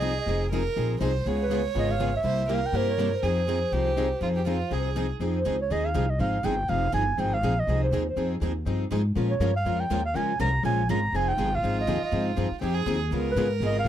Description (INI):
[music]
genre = acoustic string swing (jazz manouche)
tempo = 243 BPM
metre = 4/4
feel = swing 55% on 8ths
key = F minor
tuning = A4 = 440 Hz
[part]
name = breathy clarinet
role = melody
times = 0.0-13.9 s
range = Cb5 to Bb5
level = -28 LUFS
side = right 2 dB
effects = none
[part]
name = warm violin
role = second line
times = 0.0-5.1, 11.2-13.9 s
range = F4 to Db5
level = -32 LUFS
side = right 6 dB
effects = none
[part]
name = picked plugged-in steel-string acoustic guitar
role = accompaniment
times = 0.0-13.9 s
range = C3 to Bb4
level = -31 LUFS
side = left 6 dB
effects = none
[part]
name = picked steel-string acoustic guitar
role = accompaniment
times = 0.0-13.8 s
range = C3 to Bb4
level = -34 LUFS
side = right 8 dB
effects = none
[part]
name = upright bass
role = bass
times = 0.0-13.9 s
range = F1 to Bb2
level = -28 LUFS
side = equal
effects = none
[sound]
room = little or no reverb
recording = dry, close 1970s-style studio recording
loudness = -24 LUFS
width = side -10 dB against mid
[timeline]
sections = 0.0-5.2 A section; 5.2-13.9 A section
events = none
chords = 0.0 Fm7; 1.3 Db7; 2.2 C7b9; 3.2 Fm7; 9.2 Bbm7; 11.1 Fm7; 13.1 Db7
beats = 0.02 | 0.27 0.52 0.76 1.01 | 1.26 1.50 1.75 2.00 | 2.25 2.49 2.74 2.98 | 3.23 3.48 3.73 3.97 | 4.22 4.46 4.71 4.96 | 5.21 5.45 5.70 5.95 | 6.19 6.44 6.68 6.93 | 7.18 7.42 7.67 7.92 | 8.17 8.41 8.66 8.91 | 9.15 9.40 9.65 9.89 | 10.14 10.39 10.64 10.88 | 11.13 11.38 11.62 11.87 | 12.12 12.37 12.62 12.86 | 13.11 13.36 13.61 13.85